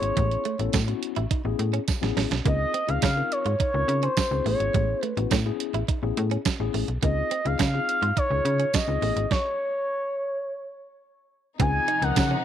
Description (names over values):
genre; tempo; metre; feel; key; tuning
early-eighties boogie funk; 105 BPM; 4/4; straight; unclear; A4 = 440 Hz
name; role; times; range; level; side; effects
expressive portamento lead; melody; 0.0-12.4 s; C5 to Ab5; -26 LUFS; equal; chorus, slapback echo
mellow tine electric piano; accompaniment; 0.0-12.4 s; C3 to Bb4; -32 LUFS; left 17 dB; medium stereo tremolo
slap-like FM bass; bass; 0.0-12.4 s; G#1 to Db3; -26 LUFS; equal; none
crisp 8-bit digital drum machine; drums; 0.0-12.3 s; hi-hat, kick drum, snare drum; -26 LUFS; right 3 dB; none
direct-recorded clean electric guitar; riff; 0.2-12.4 s; G#3 to F4; -35 LUFS; right 14 dB; wide subtle chorus
tambourine; percussion; 0.7-12.3 s; none; -37 LUFS; right 14 dB; none
warm studio string section; sustained chords; 11.6-12.4 s; C3 to Eb4; -32 LUFS; left 2 dB; none
room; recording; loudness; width
light reverb; 1960s-style stereo with parts hard left and right; -22 LUFS; side -10 dB against mid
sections
0.0-11.6 A section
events
drum fill 1.9-2.5; stop 9.3-11.6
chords
0.0 Amaj9; 2.5 Dbmaj9; 4.5 Amaj9; 7.0 Dbmaj9; 9.0 Amaj9; 11.6 Dbmaj9